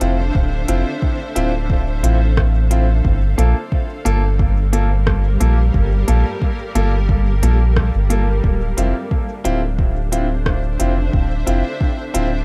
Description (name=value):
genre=ambient dub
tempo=89 BPM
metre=4/4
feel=swing 54% on 16ths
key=G dorian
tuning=A4 = 440 Hz
part: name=granular cloud pad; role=sustained chords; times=0.0-12.4 s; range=G3 to F5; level=-29 LUFS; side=equal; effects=built-in reverb, vintage 12-bit sampler grit
part: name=clear upright piano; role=stabs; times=0.0-12.3 s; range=Bb3 to A4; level=-26 LUFS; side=equal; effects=dub echo
part: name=soft dub sub bass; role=bass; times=0.0-12.4 s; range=D1 to Bb1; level=-18 LUFS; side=equal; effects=none
part: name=organic electronic drum kit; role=drums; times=0.0-12.3 s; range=hi-hat, rim click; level=-28 LUFS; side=equal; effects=dub echo
part: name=electronic kick drum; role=drums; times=0.3-12.0 s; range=none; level=-21 LUFS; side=equal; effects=none
room=digital ambience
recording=echo-heavy mix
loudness=-17 LUFS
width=mono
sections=0.0-12.4 A section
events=none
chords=0.0 Dm7; 3.0 Gm9; 8.4 Dm7